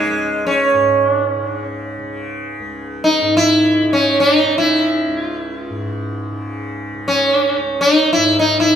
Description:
indian classical, Hindustani; free time; A4 = 438 Hz
sitar; melody; 0.0-8.8 s; G#3 to E4; -14 LUFS; equal
tanpura; drone; 0.0-8.8 s; C#2 to C#3; -26 LUFS; left 1 dB
wet large studio reverb, RT60 1.4 s; band playing live in one room; -13 LUFS; side -8 dB against mid
0.0-8.8 A section

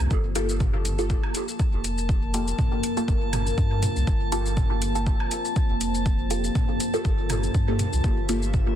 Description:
dub techno; 121 BPM; 4/4; swing 55% on 16ths; G minor; A4 = 439 Hz
deep dark ambient pad; sustained chords; 0.0-8.8 s; Bb3 to C5; -31 LUFS; left 1 dB; chorus, built-in reverb, sidechain pumping
soft dub sub bass; bass; 0.0-8.8 s; F1 to G2; -27 LUFS; equal; tube saturation, sidechain pumping
electronic shaker and hi-hat; drums; 0.0-8.6 s; -34 LUFS; left 2 dB; overdrive
electronic woodblock and toms; percussion; 0.0-8.6 s; -33 LUFS; right 2 dB; overdrive, sidechain pumping on toms, sidechain pumping on perc, dub echo
electronic kick drum; drums; 0.1-8.6 s; -24 LUFS; equal; overdrive
drifting glass-harmonics texture; texture; 0.9-8.8 s; E5 to A5; -35 LUFS; equal; chorus, built-in reverb, sidechain pumping
filtered dub chord stab; stabs; 0.4-8.6 s; Bb3 to A4; -31 LUFS; equal; phaser, sidechain pumping, dub echo
light reverb; dense, heavily limited modern master; -22 LUFS; side -10 dB against mid
0.1-8.8 A section
0.1 Gm9

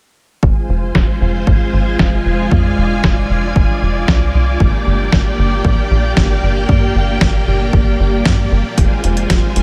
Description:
italo disco; 115 BPM; 4/4; straight; F dorian; A4 = 437 Hz
string machine, full ensemble; sustained chords; 0.4-9.6 s; Ab3 to Ab5; -21 LUFS; equal; ensemble chorus
tight sequencer bass; bass; 0.4-9.6 s; F1 to G2; -18 LUFS; equal
electronic kick drum; drums; 0.4-9.4 s; -17 LUFS; equal
detuned 8-bit digital drum machine; drums; 1.0-9.6 s; hi-hat, snare drum; -24 LUFS; equal; low-pass filter on snare, low-pass filter on hats
moderate huge ambient reverb, RT60 8.6 s; dreamy mix soaked in reverb; -14 LUFS; mono
0.4-9.6 A section
0.4 Fm; 4.6 Gm; 8.8 Fm

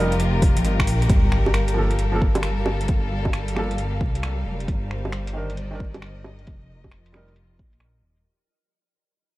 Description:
future garage; 134 BPM; 4/4; swing 65% on 16ths; G minor; A4 = 440 Hz
felt-muted upright piano; accompaniment; 0.0-7.3 s; Eb3 to Bb4; -31 LUFS; right 2 dB; sidechain pumping, tape echo
clear studio string section; sustained chords; 0.0-8.3 s; F3 to F5; -29 LUFS; left 2 dB; sidechain pumping
dark detuned saw bass; bass; 0.0-8.2 s; Eb1 to C2; -24 LUFS; equal; sidechain pumping
drifting glass-harmonics texture; texture; 0.0-1.1 s; G3 to G4; -38 LUFS; left 4 dB
deep house drum kit; drums; 0.1-8.2 s; bongos, finger snaps, hi-hat; -30 LUFS; right 1 dB; overdrive, low-pass filter on hats, low-pass filter on perc, low-pass filter on snare
electronic kick drum; drums; 0.4-7.7 s; -21 LUFS; equal; overdrive
sub drop; sound effects; 1.1-2.9 s; -27 LUFS; equal
little or no reverb; vinyl crackle; -20 LUFS; side -17 dB against mid
0.0-1.1 A section; 1.1-8.3 B section
band accent 0.8; fade-out 1.1-8.3; impact 1.1-2.9
0.0 F9sus4; 1.1 Gm9; 4.7 Cm9/G; 6.5 F9sus4

